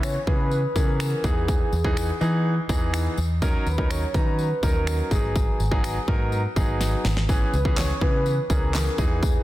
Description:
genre	dance-pop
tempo	124 BPM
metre	4/4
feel	straight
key	unclear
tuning	A4 = 440 Hz
part	mellow horn-like synth lead	melody	0.0-9.4 s	G#4 to C#5	-30 LUFS	equal	chorus, ping-pong delay
part	clear concert grand piano	accompaniment	0.0-9.4 s	E3 to A#5	-28 LUFS	equal	sidechain pumping
part	vintage muted fingered electric bass	bass	0.0-9.4 s	G#1 to E3	-25 LUFS	equal	sidechain pumping
part	pop drum kit	drums	0.0-9.3 s	finger snaps, handclaps, kick drum, snare drum	-24 LUFS	equal	soft clipping on snare
part	tambourine	percussion	0.0-9.3 s	none	-40 LUFS	left 7 dB	none
room	light reverb, digital ambience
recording	dense, heavily limited modern master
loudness	-21 LUFS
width	side -15 dB against mid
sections	0.0-9.4 A section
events	drum fill 6.8-7.3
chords	0.0 C#m7; 1.2 Emaj7; 3.4 D#m7; 5.1 G#m7; 7.3 C#m7

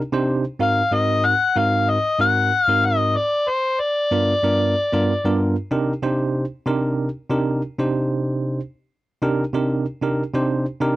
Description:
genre	blues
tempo	94 BPM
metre	4/4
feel	straight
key	C minor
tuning	A4 = 440 Hz
part	bell-like tine electric piano	accompaniment	0.1-11.0 s	G2 to C5	-20 LUFS	right 1 dB	medium stereo tremolo
part	overdriven harmonica	melody	0.6-5.4 s	C5 to Gb5	-18 LUFS	left 2 dB	none
room	little or no reverb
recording	dry, close 1970s-style studio recording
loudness	-18 LUFS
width	side -16 dB against mid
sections	0.0-10.8 A section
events	none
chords	0.0 Cm; 0.6 Ab7; 3.2 G7#9; 5.7 Cm7

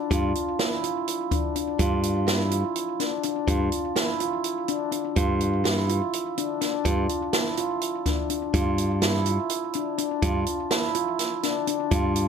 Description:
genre	progressive instrumental, band music in an uneven meter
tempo	249 BPM (eighths)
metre	7/8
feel	straight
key	unclear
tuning	A4 = 440 Hz
part	handpan	arpeggios	0.0-12.3 s	D4 to F4	-26 LUFS	equal	digital delay
part	modern bright picked electric bass	bass	0.1-12.3 s	G2	-25 LUFS	equal	none
part	open jazz drum kit	drums	0.1-12.3 s	hi-hat, kick drum, snare drum	-27 LUFS	equal	none
room	light reverb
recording	none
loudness	-23 LUFS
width	side -7 dB against mid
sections	0.0-12.3 A section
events	none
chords	0.0 G5

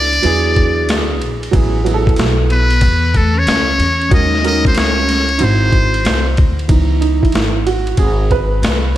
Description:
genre	hip hop, jazz-hop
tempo	93 BPM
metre	4/4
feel	swing 66% on 16ths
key	C# minor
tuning	A4 = 438 Hz
part	trumpet with metal mute	melody	0.0-6.4 s	A4 to D#5	-16 LUFS	left 1 dB	slapback echo
part	vibraphone with medium hard mallets	second line	0.0-6.4 s	A3 to D#4	-24 LUFS	left 3 dB	slapback echo
part	dark concert grand piano	accompaniment	0.0-9.0 s	E3 to B#4	-19 LUFS	right 6 dB	slapback echo
part	upright bass	bass	0.0-9.0 s	G#1 to E2	-16 LUFS	equal	none
part	boom bap sampler-style drum kit	drums	0.1-8.8 s	hi-hat, kick drum, ride cymbal, snare drum	-17 LUFS	equal	none
room	light reverb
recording	none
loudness	-11 LUFS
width	side -13 dB against mid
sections	0.0-6.7 A section; 6.7-9.0 B section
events	grand piano solo 6.7-9.0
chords	0.2 E7; 1.5 Aadd9; 4.1 D#m7; 5.4 G#7b13; 6.7 C#m9

